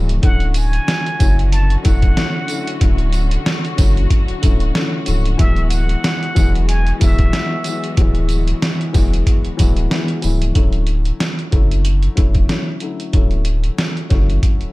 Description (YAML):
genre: hip hop, boom-bap hip-hop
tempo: 93 BPM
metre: 4/4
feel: swing 57% on 16ths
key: D lydian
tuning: A4 = 438 Hz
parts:
  - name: dark upright piano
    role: accompaniment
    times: 0.0-14.7 s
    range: D3 to E4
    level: -24 LUFS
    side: left 4 dB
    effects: cassette tape, high-pass filter, low-pass filter
  - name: warm studio string section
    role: sustained chords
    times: 0.0-10.5 s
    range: D3 to F#4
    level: -29 LUFS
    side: equal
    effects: high-pass filter, low-pass filter
  - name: warm sub bass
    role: bass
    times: 0.0-14.7 s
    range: C#1 to F#1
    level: -16 LUFS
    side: equal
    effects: none
  - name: trip hop sampler-style drum kit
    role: drums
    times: 0.1-14.7 s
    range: hi-hat, kick drum, snare drum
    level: -16 LUFS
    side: equal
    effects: none
  - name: trumpet with plunger mute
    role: melody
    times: 0.2-7.9 s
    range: E5 to A5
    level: -25 LUFS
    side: equal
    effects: high-pass filter, low-pass filter, digital delay
  - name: tambourine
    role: percussion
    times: 0.6-10.4 s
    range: none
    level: -33 LUFS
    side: right 7 dB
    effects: none
room: small room ambience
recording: none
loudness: -14 LUFS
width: side -20 dB against mid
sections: 0.0-10.6 A section; 10.6-14.7 B section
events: none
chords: 0.2 Dmaj7; 5.4 Eadd9/D; 10.6 Dmaj7